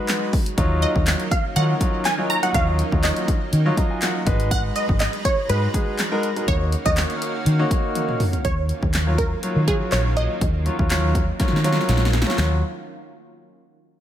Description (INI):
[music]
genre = dance-pop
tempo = 122 BPM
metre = 4/4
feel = straight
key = Eb minor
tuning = A4 = 436 Hz
[part]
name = wide unison pluck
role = melody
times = 0.0-11.8 s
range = Ab4 to Bb5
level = -26 LUFS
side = right 2 dB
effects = low-pass filter, tape echo
[part]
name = clear baby grand piano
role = accompaniment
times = 0.0-12.6 s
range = Gb3 to Bb5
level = -26 LUFS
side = left 1 dB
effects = sidechain pumping, low-pass filter
[part]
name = lush unison pad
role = sustained chords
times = 0.0-12.6 s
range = Eb3 to Bb5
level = -31 LUFS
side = right 1 dB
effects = chorus, sidechain pumping, low-pass filter
[part]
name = punchy analog drum machine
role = drums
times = 0.1-12.5 s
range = handclaps, hi-hat, kick drum, snare drum, toms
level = -23 LUFS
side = equal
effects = none
[part]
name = vintage muted fingered electric bass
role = bass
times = 0.6-12.6 s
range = Ab1 to Eb3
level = -21 LUFS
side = equal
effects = sidechain pumping
[sound]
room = digital ambience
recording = none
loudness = -18 LUFS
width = side -11 dB against mid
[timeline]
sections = 0.0-8.4 A section; 8.4-12.4 B section; 12.4-14.0 C section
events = grand piano fill 3.5-4.5; drum fill 8.0-8.4, 11.4-12.4; filter sweep 8.4-12.4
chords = 0.0 Abm7; 0.6 Ebm9; 4.3 Abm7; 6.5 Ebm7; 8.4 Ebm9